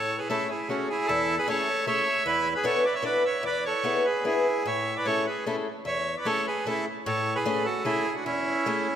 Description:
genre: musette.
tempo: 150 BPM.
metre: 3/4.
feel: rubato.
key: A major.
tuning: A4 = 440 Hz.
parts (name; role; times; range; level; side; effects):
accordion; melody; 0.0-9.0 s; C#4 to E5; -26 LUFS; right 2 dB; none.
picked old ladder-braced acoustic guitar; accompaniment; 0.0-8.9 s; E2 to B4; -29 LUFS; left 2 dB; none.
room: wet concert hall reverb, RT60 2.1 s.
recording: none.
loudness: -24 LUFS.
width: side -9 dB against mid.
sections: 0.0-9.0 A section.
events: none.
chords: 0.0 Amaj7; 2.3 E7sus4; 3.4 E7; 4.7 Amaj7.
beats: 0.29 0.69 | 1.08 1.47 1.86 | 2.25 2.64 3.04 | 3.43 3.84 4.24 | 4.65 5.05 5.46 | 5.86 6.26 6.66 | 7.06 7.45 7.85 | 8.25 8.65.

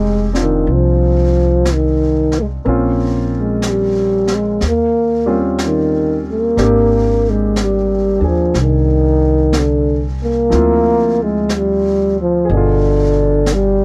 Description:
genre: jazz ballad.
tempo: 61 BPM.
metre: 4/4.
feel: swing 66% on 8ths.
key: unclear.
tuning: A4 = 440 Hz.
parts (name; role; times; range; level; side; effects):
breathy trombone; melody; 0.0-13.8 s; D3 to Bb3; -17 LUFS; equal; none.
warm grand piano; accompaniment; 0.0-13.8 s; B2 to Ab4; -24 LUFS; equal; none.
upright bass; bass; 0.0-13.8 s; F1 to Eb2; -20 LUFS; equal; none.
vintage brush drum kit; drums; 0.3-13.8 s; brushed snare drum, hi-hat, snare drum; -28 LUFS; equal; none.
room: little or no reverb.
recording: dry, close 1970s-style studio recording.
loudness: -15 LUFS.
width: mono.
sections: 0.0-13.8 A section.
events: none.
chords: 0.0 Fm9; 2.6 Bbm; 4.6 Eb13; 6.6 Abmaj9#11; 10.5 Dm11; 12.5 G7b9.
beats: 0.67 1.66 | 2.64 3.63 4.61 5.60 | 6.58 7.57 8.55 9.54 | 10.52 11.51 12.49 13.47.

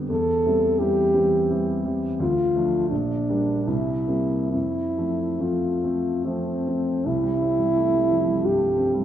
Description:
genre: classical, romantic duo for French horn and grand piano.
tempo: 66-88 BPM.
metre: 3/4.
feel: rubato.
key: F major.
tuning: A4 = 442 Hz.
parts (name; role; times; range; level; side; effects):
dark baby grand piano; accompaniment; 0.0-9.0 s; Bb1 to D4; -25 LUFS; equal; none.
mellow French horn; melody; 0.1-9.0 s; C4 to A4; -22 LUFS; equal; none.
room: moderate recital hall reverb, RT60 1.5 s.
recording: none.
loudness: -20 LUFS.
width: side -10 dB against mid.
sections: 0.0-7.1 A section; 7.1-9.0 B section.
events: none.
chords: 0.1 C/E; 2.2 Dm; 2.9 Gm/Bb; 3.7 C7; 4.5 F; 7.1 C.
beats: | 0.10 0.79 1.49 | 2.20 2.92 3.68 | 4.53 5.42 6.26 | 7.06 7.76 8.45.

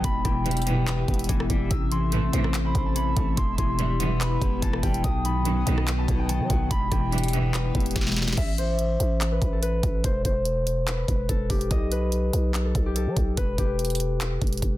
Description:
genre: hip hop, trap.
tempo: 144 BPM.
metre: 4/4.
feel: half-time.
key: E harmonic minor.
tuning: A4 = 441 Hz.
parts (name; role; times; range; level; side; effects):
concert harp; melody; 0.0-14.8 s; G4 to E6; -30 LUFS; left 2 dB; low-pass filter, ping-pong delay.
direct-recorded clean electric guitar; accompaniment; 0.0-8.4 s; B2 to C5; -30 LUFS; left 5 dB; tremolo, low-pass filter.
airy breathy pad; sustained chords; 0.0-8.4 s; B3 to E5; -34 LUFS; left 2 dB; chorus.
growling 808-style bass; bass; 0.0-14.8 s; E1 to F#3; -26 LUFS; equal; none.
trap drum kit; drums; 0.0-14.7 s; crash cymbal, handclaps, hi-hat, kick drum, rim click, snare drum; -26 LUFS; equal; none.
clear symphonic string section; stabs; 0.5-7.6 s; B1 to E3; -30 LUFS; right 4 dB; none.
room: little or no reverb.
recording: dense, heavily limited modern master.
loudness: -22 LUFS.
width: side -15 dB against mid.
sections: 0.0-8.4 A section; 8.4-14.8 B section.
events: drum fill 8.0-8.4.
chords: 0.0 Em; 1.7 Am; 3.4 Em; 5.0 B; 6.7 Em; 8.4 Am; 10.0 E5; 11.7 B5; 13.4 Em.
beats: | 0.04 0.46 0.87 1.29 | 1.71 2.12 2.54 2.96 | 3.37 3.79 4.21 4.62 | 5.04 5.46 5.87 6.29 | 6.71 7.12 7.54 7.96 | 8.37 8.79 9.21 9.62 | 10.04 10.46 10.87 11.29 | 11.71 12.12 12.54 12.96 | 13.37 13.79 14.21 14.62.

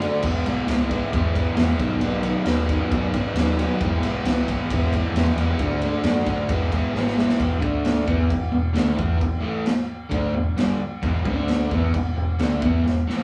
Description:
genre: garage rock duo or trio.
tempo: 133 BPM.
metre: 4/4.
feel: straight.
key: E major.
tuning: A4 = 440 Hz.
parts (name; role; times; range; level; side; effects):
crunchy overdriven guitar; riff; 0.0-13.2 s; E2 to F#4; -25 LUFS; equal; none.
hollow-body short-scale fingered electric bass; bass; 0.0-13.2 s; E1 to F#2; -29 LUFS; equal; none.
raw garage drum kit; drums; 0.0-13.2 s; crash cymbal, kick drum, ride cymbal, snare drum; -27 LUFS; equal; none.
room: moderate large studio reverb, RT60 0.9 s.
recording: band playing live in one room.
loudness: -22 LUFS.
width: mono.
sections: 0.0-7.4 A section; 7.4-13.2 B section.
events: drum fill 6.9-7.4, 12.8-13.2.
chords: 0.2 E; 1.8 B; 3.8 E; 5.6 D; 6.5 E; 7.4 E5; 7.6 D5; 8.1 E5; 11.2 D5; 11.7 E5.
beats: | 0.22 0.67 1.12 1.56 | 2.01 2.46 2.91 3.35 | 3.80 4.25 4.70 5.15 | 5.60 6.04 6.50 6.95 | 7.40 7.85 8.30 8.75 | 9.21 9.66 10.11 10.57 | 11.02 11.48 11.93 12.38 | 12.84.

